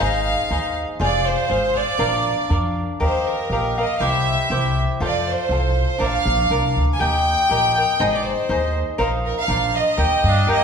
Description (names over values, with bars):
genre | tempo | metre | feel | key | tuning
mexican folk, mariachi | 120 BPM | 2/4 | straight | Eb major | A4 = 440 Hz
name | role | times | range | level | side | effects
clear chamber violin section | melody | 0.0-10.6 s | Bb4 to Ab5 | -21 LUFS | right 1 dB | none
cavaquinho | accompaniment | 0.0-10.6 s | D4 to G5 | -22 LUFS | left 1 dB | none
upright bass | bass | 0.0-10.6 s | F1 to G2 | -23 LUFS | equal | none
clear trumpet | second line | 10.3-10.6 s | Bb3 to D4 | -24 LUFS | right 2 dB | none
room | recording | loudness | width
wet recital hall reverb, RT60 1.6 s | heard from further back in the room | -17 LUFS | side -6 dB against mid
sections
0.0-10.6 A section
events
none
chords
0.0 Ab; 1.0 Fm; 2.0 Bb; 3.0 Ebadd9; 4.0 C; 5.0 F; 6.0 Bb; 7.0 Eb; 8.0 Ab; 9.0 Bbsus4; 9.5 Bbadd9; 10.0 Eb